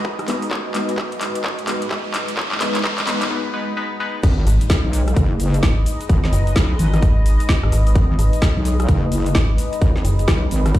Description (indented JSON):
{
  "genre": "bass house",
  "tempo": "129 BPM",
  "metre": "4/4",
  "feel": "swing 62% on 16ths",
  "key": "G# minor",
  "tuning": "A4 = 440 Hz",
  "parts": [
    { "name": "sweeping resonant pad", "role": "sustained chords", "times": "0.0-10.8 s", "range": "G#3 to D#5", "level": "-28 LUFS", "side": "left 1 dB", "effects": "chorus, sidechain pumping" },
    { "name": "electronic kick drum", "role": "drums", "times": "0.0-10.8 s", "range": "none", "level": "-16 LUFS", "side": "equal", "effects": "high-pass filter on kick, studio reverb" },
    { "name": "riser and impact", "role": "sound effects", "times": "0.1-6.1 s", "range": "none", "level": "-29 LUFS", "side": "equal", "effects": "none" },
    { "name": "granular cloud pad", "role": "texture", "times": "0.0-3.3 s", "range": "G#3 to D#5", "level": "-31 LUFS", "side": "right 2 dB", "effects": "built-in reverb, sidechain pumping" },
    { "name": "garage drum kit", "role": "drums", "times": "0.2-10.8 s", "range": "crash cymbal, handclaps, hi-hat, rim click, shaker, snare drum", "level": "-25 LUFS", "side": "left 1 dB", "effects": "studio reverb" },
    { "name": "band-passed chord stab", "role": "stabs", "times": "0.3-4.2 s", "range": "G#3 to B4", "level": "-25 LUFS", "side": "left 2 dB", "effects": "phaser, sidechain pumping, ping-pong delay" },
    { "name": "wobble bass", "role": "bass", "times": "4.2-10.7 s", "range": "F#1 to B1", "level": "-18 LUFS", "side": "equal", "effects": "chorus, sidechain pumping" },
    { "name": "metallic FM bass", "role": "bass", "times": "4.5-10.3 s", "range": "F#1 to G#1", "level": "-16 LUFS", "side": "equal", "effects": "sidechain pumping" }
  ],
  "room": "little or no reverb",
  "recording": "played on a big sound system in a bare room, large studio reverb",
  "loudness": "-16 LUFS",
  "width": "side -14 dB against mid",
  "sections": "0.0-4.2 A section; 4.2-10.8 B section",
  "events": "build-up 0.0-4.2; drum fill 0.0-3.3; filter sweep on synth stab 0.0-4.2; riser 0.1-3.3; break 3.3-4.2; drop 4.2-10.8; impact 4.2-6.1",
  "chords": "0.0 G#m"
}